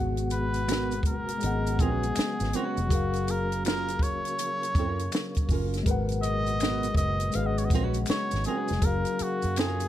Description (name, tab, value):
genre	R&B, neo-soul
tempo	81 BPM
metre	4/4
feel	swing 63% on 16ths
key	F# major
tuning	A4 = 442 Hz
part	mellow tine electric piano	accompaniment	0.0-9.9 s	F#3 to F#5	-32 LUFS	left 5 dB	analog chorus
part	tonewheel organ	sustained chords	0.0-9.9 s	A#2 to F#4	-39 LUFS	right 1 dB	slow rotary speaker, chorus vibrato
part	vintage muted fingered electric bass	bass	0.0-9.9 s	E#1 to F#2	-30 LUFS	equal	none
part	compact cocktail drum kit	drums	0.2-9.9 s	hi-hat, kick drum, snare drum	-29 LUFS	equal	none
part	maracas and finger snaps	percussion	0.2-9.9 s	none	-42 LUFS	right 3 dB	none
part	trumpet with cup mute	melody	0.3-9.9 s	F#4 to E#5	-32 LUFS	right 1 dB	none
part	nylon-string guitar	second line	0.7-9.8 s	B3 to B4	-34 LUFS	right 7 dB	none
room	little or no reverb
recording	none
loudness	-25 LUFS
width	side -12 dB against mid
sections	0.0-9.9 A section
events	none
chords	0.0 G#m9; 1.4 C#7sus4/G#; 2.9 F#maj7; 5.9 G#m9; 7.3 C#7sus4/G#; 8.8 F#maj7